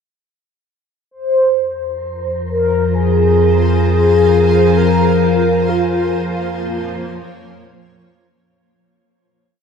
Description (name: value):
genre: dark ambient drone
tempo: 66 BPM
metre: 4/4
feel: straight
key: F minor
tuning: A4 = 440 Hz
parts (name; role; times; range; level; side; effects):
- mellow horn-like synth lead; melody; 1.1-7.1 s; F4 to C5; -15 LUFS; equal; analog chorus, shimmer reverb, diffuse ambient delay
- granular cloud pad; sustained chords; 2.6-8.5 s; F3 to Ab5; -23 LUFS; right 1 dB; built-in reverb, lush chorus, shimmer reverb
- deep rumbling drone; drone; 2.1-8.6 s; F2 to F3; -16 LUFS; left 2 dB; built-in reverb, lush chorus
- wind-like tuned noise texture; texture; 2.2-8.5 s; Bb4; -28 LUFS; right 2 dB; built-in reverb, shimmer reverb
room: wet huge ambient reverb, RT60 7.9 s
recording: dreamy mix soaked in reverb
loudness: -12 LUFS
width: side -6 dB against mid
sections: 1.1-8.5 A section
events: fade-in on ambient pad 1.1-8.5; fade-in on synth texture 1.1-8.5; fade-out 4.8-8.5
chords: 1.1 Fm; 4.8 Bbm/F